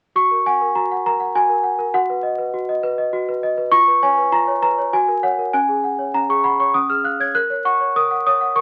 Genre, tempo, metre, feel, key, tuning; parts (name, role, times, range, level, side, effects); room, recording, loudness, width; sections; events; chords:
classical, lullaby for celesta; 100 BPM; 3/4; straight; F# major; A4 = 440 Hz
worn celesta; solo; 0.2-8.6 s; C#4 to G#6; -18 LUFS; equal
wet studio reverb, RT60 0.7 s; very old 78 rpm record, vinyl crackle; -18 LUFS; mono
0.2-8.6 A section
0.2 F#; 1.9 B/F#; 3.7 C#7/E#; 4.9 F#; 5.5 C#sus4; 6.7 C#; 7.4 F#/A#